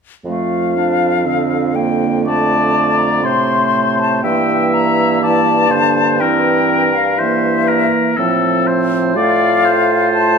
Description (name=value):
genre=classical, slow romantic movement for wind quintet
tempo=61 BPM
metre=4/4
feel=rubato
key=F major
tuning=A4 = 440 Hz
part: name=dark French horn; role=accompaniment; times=0.2-10.4 s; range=C3 to A3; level=-20 LUFS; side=equal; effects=none
part: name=mellow bassoon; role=bass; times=0.2-10.4 s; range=F2 to A2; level=-20 LUFS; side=right 4 dB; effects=none
part: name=bright concert flute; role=melody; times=0.3-10.4 s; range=E5 to C6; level=-18 LUFS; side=left 7 dB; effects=none
part: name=bright clarinet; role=accompaniment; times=0.3-10.4 s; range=A3 to F4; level=-20 LUFS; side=right 9 dB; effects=none
part: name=clear oboe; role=second line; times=2.3-10.4 s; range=A4 to E5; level=-17 LUFS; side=left 2 dB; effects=none
room=moderate recital hall reverb, RT60 1.8 s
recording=none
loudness=-12 LUFS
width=side -6 dB against mid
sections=0.2-10.4 A section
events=none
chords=0.2 F; 4.2 Edim/G; 8.2 F/A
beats=| 0.24 1.25 2.25 3.24 | 4.24 5.22 6.20 7.19 | 8.18 9.16 10.15